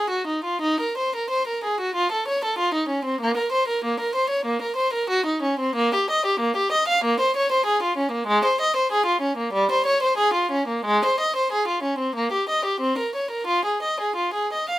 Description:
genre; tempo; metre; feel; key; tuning
classical, baroque-style suite movement for unaccompanied violin; 93 BPM; 4/4; uneven beats, rubato; Bb minor, F minor from 5.8 s; A4 = 441 Hz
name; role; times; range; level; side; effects
warm violin; solo; 0.0-14.8 s; G3 to F5; -20 LUFS; equal; none
room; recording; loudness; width
light reverb; none; -20 LUFS; side -15 dB against mid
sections
0.0-14.8 A section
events
none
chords
none

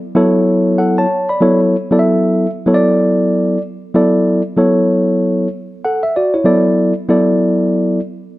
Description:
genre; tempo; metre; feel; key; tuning
hip hop; 95 BPM; 4/4; swing 58% on 16ths; unclear; A4 = 440 Hz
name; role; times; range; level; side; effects
mellow tine electric piano; solo; 0.1-8.0 s; F#3 to B5; -12 LUFS; equal; none
room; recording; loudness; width
moderate echo chamber reverb, RT60 1.5 s, digital ambience; none; -12 LUFS; side -17 dB against mid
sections
0.0-3.9 A section; 3.9-8.4 B section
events
none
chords
0.0 Dmaj13/F#; 2.7 Esus2; 3.9 Dmaj9

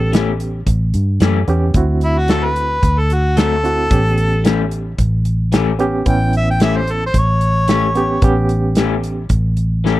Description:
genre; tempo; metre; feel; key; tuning
straight-eighth soul blues; 111 BPM; 4/4; straight; A mixolydian; A4 = 440 Hz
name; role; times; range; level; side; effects
warm harmonica; melody; 0.0-8.2 s; E4 to G5; -18 LUFS; equal; overdrive, slapback echo
barky reed electric piano; accompaniment; 0.0-9.2 s; B3 to G4; -21 LUFS; right 3 dB; overdrive, fast tremolo
vintage muted fingered electric bass; bass; 0.0-10.0 s; A1 to G2; -17 LUFS; equal; none
electric guitar through a small old amp; stabs; 0.1-10.0 s; E3 to G4; -20 LUFS; left 7 dB; spring reverb
warm soul drum kit; drums; 0.1-10.0 s; hi-hat, kick drum, snare drum; -16 LUFS; equal; none
room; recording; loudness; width
little or no reverb; dry, close 1970s-style studio recording; -13 LUFS; side -16 dB against mid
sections
0.0-10.0 A section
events
none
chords
0.0 A7; 1.8 D7; 3.9 A7

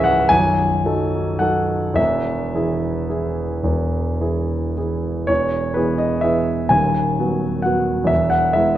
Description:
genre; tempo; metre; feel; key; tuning
classical, romantic nocturne for solo piano; 34-44 BPM (dotted quarters); 6/8; rubato; E major; A4 = 440 Hz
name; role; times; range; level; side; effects
warm grand piano; solo; 0.0-8.8 s; B0 to G#5; -17 LUFS; equal; none
room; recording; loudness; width
moderate scoring stage reverb, RT60 1.9 s; worn, warbling old tape, cassette tape, warbly pitch drift; -17 LUFS; side -12 dB against mid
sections
0.0-5.3 A section; 5.3-8.8 B section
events
none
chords
0.3 B7; 2.0 E; 6.7 B/D#; 8.1 E

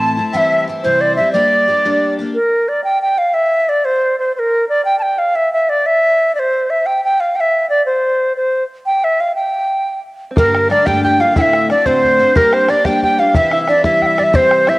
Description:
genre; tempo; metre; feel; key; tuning
celtic folk, Celtic jig; 120 BPM (dotted quarters); 6/8; straight; G dorian; A4 = 439 Hz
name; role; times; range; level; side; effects
bright wooden flute; melody; 0.0-14.8 s; Bb4 to A5; -13 LUFS; equal; cassette tape
accordion; second line; 0.0-2.1, 10.4-14.8 s; Bb4 to A5; -21 LUFS; left 1 dB; light tremolo tuning, cassette tape
picked twelve-string acoustic guitar; accompaniment; 0.0-2.4, 10.4-14.8 s; D2 to G4; -20 LUFS; left 2 dB; cassette tape
open-back banjo; second line; 10.3-14.8 s; Bb3 to G4; -24 LUFS; equal; cassette tape
bodhran; percussion; 10.4-14.8 s; none; -18 LUFS; left 1 dB; none
room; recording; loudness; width
wet spring reverb, RT60 2.1 s; home recording on cassette; -12 LUFS; side -21 dB against mid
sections
0.0-2.3 A section; 2.3-10.4 B section; 10.4-14.8 B section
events
none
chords
0.3 C; 1.3 Gm; 2.3 N.C.; 10.4 Gmadd9; 11.4 D7; 12.4 Gm; 13.3 C

